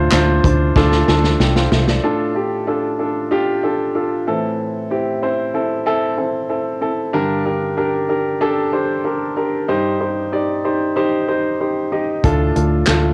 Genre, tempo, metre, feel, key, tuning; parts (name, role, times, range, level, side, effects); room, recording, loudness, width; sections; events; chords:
piano-driven pop; 94 BPM; 4/4; straight; A4 = 440 Hz
warm baby grand piano; accompaniment; 0.0-13.1 s; G2 to G5; -20 LUFS; equal; cassette tape
vintage muted picked electric bass; bass; 0.0-2.0, 12.2-13.1 s; C2 to D2; -19 LUFS; equal
natural country drum kit; drums; 0.1-2.0, 12.2-13.0 s; handclaps, hi-hat, kick drum, snare drum; -20 LUFS; equal
moderate spring reverb, RT60 1.4 s, studio reverb; home recording on cassette; -18 LUFS; mono
0.0-2.0 A section; 2.0-13.1 B section
drum fill 0.8-2.0
0.0 Dm; 4.3 Am; 7.1 Gm; 9.7 Cm; 12.2 Dm